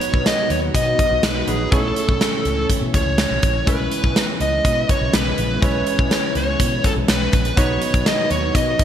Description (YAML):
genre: 1980s-style pop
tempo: 123 BPM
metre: 4/4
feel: straight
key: unclear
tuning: A4 = 440 Hz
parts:
  - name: smooth overdriven lead guitar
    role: melody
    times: 0.0-8.8 s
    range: G#4 to D#5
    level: -21 LUFS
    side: right 1 dB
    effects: none
  - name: warm analog keys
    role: accompaniment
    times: 0.0-8.8 s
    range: F#3 to C#5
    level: -26 LUFS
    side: right 1 dB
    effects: chorus
  - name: soft string machine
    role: sustained chords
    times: 0.0-8.8 s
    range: A2 to F#4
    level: -29 LUFS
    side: left 2 dB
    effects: ensemble chorus
  - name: big rock drum kit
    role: drums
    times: 0.0-8.8 s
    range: hi-hat, kick drum, snare drum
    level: -20 LUFS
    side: equal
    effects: none
  - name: vintage muted fingered electric bass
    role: bass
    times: 0.1-8.7 s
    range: A#1 to B2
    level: -24 LUFS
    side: equal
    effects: none
room: moderate lush hall reverb, RT60 2.4 s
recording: bright 1980s-style digital production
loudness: -16 LUFS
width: side -9 dB against mid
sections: 0.0-8.8 A section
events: none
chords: 0.0 B; 1.7 A/B; 3.7 E6/B; 7.6 B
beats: 0.26 0.75 1.23 | 1.72 2.21 2.70 3.19 | 3.67 4.16 4.65 5.14 | 5.62 6.11 6.60 7.09 | 7.58 8.06 8.55